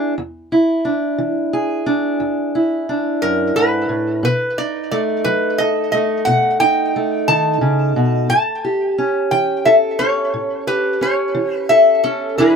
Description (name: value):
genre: acoustic country blues, solo or duo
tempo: 59 BPM (dotted quarters)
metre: 12/8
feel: straight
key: unclear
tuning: A4 = 440 Hz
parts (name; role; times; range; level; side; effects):
- fingerpicked steel-string acoustic guitar; accompaniment; 0.0-12.6 s; E2 to A4; -17 LUFS; right 1 dB; none
- metal-body resonator slide guitar; melody; 3.2-12.6 s; A4 to A5; -16 LUFS; left 1 dB; tape echo
room: light reverb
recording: close, detailed microphones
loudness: -15 LUFS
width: side -6 dB against mid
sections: 0.0-12.6 A section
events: none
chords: 0.0 E7; 4.2 B7; 8.3 A7